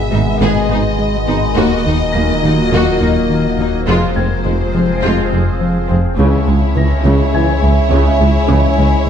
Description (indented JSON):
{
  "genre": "cinematic, hybrid orchestral and electronic film score",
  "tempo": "104 BPM",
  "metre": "4/4",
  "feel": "straight",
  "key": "unclear",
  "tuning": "A4 = 440 Hz",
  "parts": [
    { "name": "rich symphonic violin section", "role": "melody", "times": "0.0-9.1 s", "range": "C5 to E5", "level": "-23 LUFS", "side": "left 4 dB", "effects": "none" },
    { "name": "dark trombone section", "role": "sustained chords", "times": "0.0-8.7 s", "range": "A#2 to F3", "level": "-24 LUFS", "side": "right 4 dB", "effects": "none" },
    { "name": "mellow French horn section", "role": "sustained chords", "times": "0.0-8.7 s", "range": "G#3 to G#4", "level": "-22 LUFS", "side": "left 4 dB", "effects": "none" },
    { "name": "overtone-sweeping drone", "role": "sustained chords", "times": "0.0-9.1 s", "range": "F3 to F5", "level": "-21 LUFS", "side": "equal", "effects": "chorus, built-in reverb, phaser" },
    { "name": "sub bass with octave", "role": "bass", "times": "0.0-9.1 s", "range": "D#1 to C#2", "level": "-19 LUFS", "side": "equal", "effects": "none" },
    { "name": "dark baby grand piano", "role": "texture", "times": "0.0-9.1 s", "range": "G#5 to A#6", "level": "-30 LUFS", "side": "left 3 dB", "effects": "none" },
    { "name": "warm symphonic violin section", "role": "second line", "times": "0.1-9.1 s", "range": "Ab3 to G#4", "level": "-23 LUFS", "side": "left 3 dB", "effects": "none" },
    { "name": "dark symphonic viola section", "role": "accompaniment", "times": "0.1-9.1 s", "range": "C#3 to B3", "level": "-23 LUFS", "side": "equal", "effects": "none" },
    { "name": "round analog bass", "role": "riff", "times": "0.1-9.1 s", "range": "C#2 to G#3", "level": "-18 LUFS", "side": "left 2 dB", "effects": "none" },
    { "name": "dark tuba", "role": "bass", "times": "0.1-9.1 s", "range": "F1 to D#2", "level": "-22 LUFS", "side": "right 4 dB", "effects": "none" },
    { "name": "rich symphonic double bass section", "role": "bass", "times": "0.1-9.1 s", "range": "F1 to D#2", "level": "-23 LUFS", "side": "right 4 dB", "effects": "none" },
    { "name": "warm symphonic cello section", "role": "bass", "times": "0.1-9.1 s", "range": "C#2 to G#2", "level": "-22 LUFS", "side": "right 2 dB", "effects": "none" }
  ],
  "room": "moderate scoring stage reverb, RT60 1.5 s",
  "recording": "dark, warm production",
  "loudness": "-11 LUFS",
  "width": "side -8 dB against mid",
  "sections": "0.0-6.2 A section; 6.2-9.1 B section",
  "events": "none",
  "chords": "0.0 G#m; 1.6 D#m; 3.9 Fm; 6.2 C#m"
}